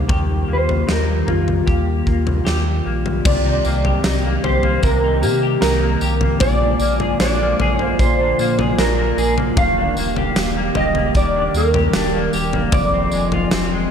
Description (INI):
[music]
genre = dream pop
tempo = 76 BPM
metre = 4/4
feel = straight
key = unclear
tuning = A4 = 440 Hz
[part]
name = warbly tape-like pad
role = sustained chords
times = 0.0-13.9 s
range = D3 to G4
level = -24 LUFS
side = right 1 dB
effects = chorus, built-in reverb
[part]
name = semi-hollow electric guitar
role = arpeggios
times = 0.0-13.9 s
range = F2 to Ab4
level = -24 LUFS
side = left 2 dB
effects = lush chorus, ping-pong delay
[part]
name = sub bass with octave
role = bass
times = 0.0-13.9 s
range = Eb1 to C3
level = -21 LUFS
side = equal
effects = none
[part]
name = huge arena drum kit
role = drums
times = 0.1-13.7 s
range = crash cymbal, kick drum, snare drum, tambourine, toms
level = -21 LUFS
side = left 1 dB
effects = none
[part]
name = mellow electric guitar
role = melody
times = 0.5-13.5 s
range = F4 to F5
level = -21 LUFS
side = right 1 dB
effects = ensemble chorus, ping-pong delay
[sound]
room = light reverb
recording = dark, warm production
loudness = -15 LUFS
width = side -7 dB against mid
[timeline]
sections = 0.0-3.2 A section; 3.2-13.9 B section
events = none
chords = 0.1 Ebadd9; 3.2 Cm7; 6.4 Bb7; 9.6 Ebmaj7; 12.7 Fm7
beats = | 0.09 0.88 1.67 2.46 | 3.25 4.04 4.83 5.62 | 6.41 7.20 7.99 8.78 | 9.57 10.36 11.14 11.93 | 12.72 13.51